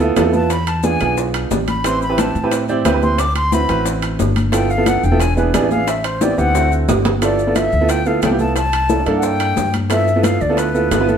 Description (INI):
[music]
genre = Afro-Cuban jazz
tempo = 179 BPM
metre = 4/4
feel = straight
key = G mixolydian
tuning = A4 = 440 Hz
[part]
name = warm upright piano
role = accompaniment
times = 0.0-11.2 s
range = A3 to D5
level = -18 LUFS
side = right 4 dB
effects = none
[part]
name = upright bass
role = bass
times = 0.0-11.2 s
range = E1 to A2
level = -20 LUFS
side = left 1 dB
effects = none
[part]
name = bongos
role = percussion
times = 0.0-11.2 s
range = none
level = -26 LUFS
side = left 5 dB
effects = none
[part]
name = congas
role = percussion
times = 0.0-11.2 s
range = none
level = -24 LUFS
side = left 1 dB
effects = none
[part]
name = maracas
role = percussion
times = 0.0-11.2 s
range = none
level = -33 LUFS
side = left 8 dB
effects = none
[part]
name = timbales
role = percussion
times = 0.2-11.1 s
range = none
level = -24 LUFS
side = right 4 dB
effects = none
[part]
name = reedy concert flute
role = melody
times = 0.3-11.2 s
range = B4 to D6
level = -20 LUFS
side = left 2 dB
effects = none
[sound]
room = moderate stone room reverb, RT60 1.1 s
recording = band playing live in one room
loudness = -14 LUFS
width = side -8 dB against mid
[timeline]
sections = 0.0-7.2 A section; 7.2-11.2 B section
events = flute solo 0.0-7.2; drum fill 6.2-7.2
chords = 0.0 G13 (rootless); 0.5 E7b9; 1.8 Am7; 3.2 D13; 4.5 G13; 5.2 E7; 5.9 Am7; 6.5 D7; 7.2 G13; 8.6 C13; 9.9 G13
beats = 0.17 | 0.50 0.84 1.17 1.51 | 1.85 2.18 2.52 2.85 | 3.19 3.53 3.86 4.20 | 4.53 4.87 5.21 5.54 | 5.88 6.21 6.55 6.88 | 7.22 7.55 7.89 8.23 | 8.56 8.90 9.23 9.57 | 9.90 10.24 10.58 10.91